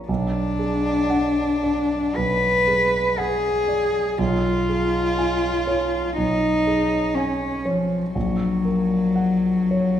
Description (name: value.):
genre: classical, romantic duo for cello and grand piano.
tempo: 60 BPM.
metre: 4/4.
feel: rubato.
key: unclear.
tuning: A4 = 440 Hz.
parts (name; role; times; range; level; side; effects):
dark concert grand piano; accompaniment; 0.0-10.0 s; A#1 to A#5; -25 LUFS; right 2 dB; none.
warm cello; melody; 0.1-10.0 s; E#3 to B4; -20 LUFS; left 2 dB; none.
room: wet recital hall reverb, RT60 1.4 s.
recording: recorded in a church or concert hall.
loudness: -19 LUFS.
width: side -10 dB against mid.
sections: 0.0-10.0 A section.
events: none.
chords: 0.1 G#m7b5/B; 4.2 C#7/B; 8.2 F#/A#.